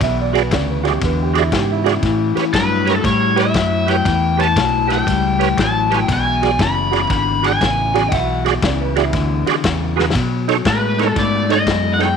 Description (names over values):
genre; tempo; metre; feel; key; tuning
electric blues shuffle; 118 BPM; 4/4; swing 67% on 8ths; E mixolydian; A4 = 436 Hz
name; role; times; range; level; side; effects
warm upright piano; second line; 0.0-2.4, 8.1-9.5 s; E4 to E5; -24 LUFS; right 12 dB; tape echo
electric guitar through a small old amp; riff; 0.0-12.2 s; E2 to A3; -21 LUFS; left 10 dB; wide subtle chorus
fingered electric bass; bass; 0.0-12.2 s; F#1 to B2; -21 LUFS; right 2 dB; none
warm soul drum kit; drums; 0.0-12.1 s; kick drum, ride cymbal, snare drum; -22 LUFS; left 3 dB; none
bright tonewheel organ; accompaniment; 0.3-12.1 s; D#4 to E5; -21 LUFS; right 15 dB; slow rotary speaker, chorus vibrato
raw garage guitar; melody; 2.5-12.2 s; B4 to B5; -18 LUFS; left 2 dB; overdrive
room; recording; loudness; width
light reverb, studio ambience; 1960s-style stereo with parts hard left and right; -14 LUFS; side -6 dB against mid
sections
0.0-12.2 A section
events
drum fill 9.9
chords
0.0 E7; 2.0 A7; 6.1 E7; 10.1 B7